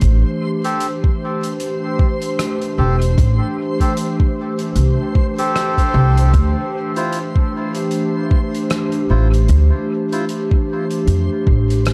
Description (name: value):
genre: ambient dub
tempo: 76 BPM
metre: 4/4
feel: swing 58% on 16ths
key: unclear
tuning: A4 = 438 Hz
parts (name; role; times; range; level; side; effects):
- warbly tape-like pad; sustained chords; 0.0-11.9 s; E3 to C5; -24 LUFS; equal; chorus, built-in reverb
- upright bass; bass; 0.0-11.9 s; E1 to F2; -16 LUFS; equal; none
- electronic kick drum; drums; 0.0-11.7 s; none; -17 LUFS; equal; none
- soft-mallet drum kit; drums; 0.0-11.9 s; hi-hat, rim click; -31 LUFS; equal; dub echo
- backwards swelling texture; texture; 0.0-11.9 s; C5; -34 LUFS; equal; built-in reverb
- melodica; stabs; 0.6-10.3 s; E4 to C5; -27 LUFS; equal; low-pass filter, dub echo
room: small room ambience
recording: dark, warm production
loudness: -17 LUFS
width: mono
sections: 0.0-11.9 A section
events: none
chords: 0.0 Am7; 6.3 Dm9